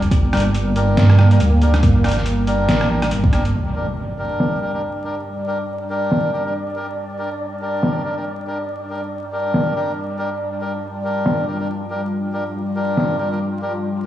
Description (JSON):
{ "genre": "deep dubstep", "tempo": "140 BPM", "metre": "4/4", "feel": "swing 58% on 16ths, half-time", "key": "G minor", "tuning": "A4 = 444 Hz", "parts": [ { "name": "dark analog pad", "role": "sustained chords", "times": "0.0-14.1 s", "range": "G3 to G4", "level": "-25 LUFS", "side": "equal", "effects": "chorus" }, { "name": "dark detuned saw bass", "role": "bass", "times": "0.0-3.5 s", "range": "F1 to G2", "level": "-16 LUFS", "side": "right 1 dB", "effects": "tube saturation" }, { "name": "trip hop sampler-style drum kit", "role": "drums", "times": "0.0-13.1 s", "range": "hi-hat, rim click, snare drum", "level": "-22 LUFS", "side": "equal", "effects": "overdrive, low-pass filter on snare, small room reverb, low-pass filter on hats" }, { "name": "electronic kick drum", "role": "drums", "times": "0.1-3.3 s", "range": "none", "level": "-15 LUFS", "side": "equal", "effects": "small room reverb" }, { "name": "melodica", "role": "stabs", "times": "0.3-13.7 s", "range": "D4 to Bb4", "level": "-24 LUFS", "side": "left 1 dB", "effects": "dub echo" }, { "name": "impact", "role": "sound effects", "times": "3.5-5.3 s", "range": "none", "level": "-28 LUFS", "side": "equal", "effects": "none" }, { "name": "wind-like tuned noise texture", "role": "texture", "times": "4.1-14.1 s", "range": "D4 to D5", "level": "-29 LUFS", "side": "right 2 dB", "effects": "built-in reverb" } ], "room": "moderate spring reverb, RT60 1.6 s, digital ambience", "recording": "played on a big sound system in a bare room, large studio reverb, vinyl crackle, small room ambience", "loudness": "-17 LUFS", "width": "side -12 dB against mid", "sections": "0.0-3.5 A section; 3.5-14.1 B section", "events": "drop 0.0-3.5; impact 3.5-5.3", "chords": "0.0 Gm" }